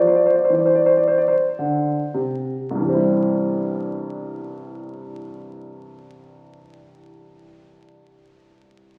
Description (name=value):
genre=classical, baroque-style suite movement for grand piano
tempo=53 BPM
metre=4/4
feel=rubato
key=C major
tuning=A4 = 440 Hz
part: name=warm grand piano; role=solo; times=0.0-9.0 s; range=C2 to D5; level=-21 LUFS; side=equal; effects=none
room=wet recital hall reverb, RT60 1.4 s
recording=very old 78 rpm record, vinyl crackle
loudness=-20 LUFS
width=mono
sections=0.0-2.7 A section; 2.7-7.2 B section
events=slowing down 0.0-2.7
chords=0.0 C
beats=0.52 1.59 | 2.70 3.84 4.96 6.10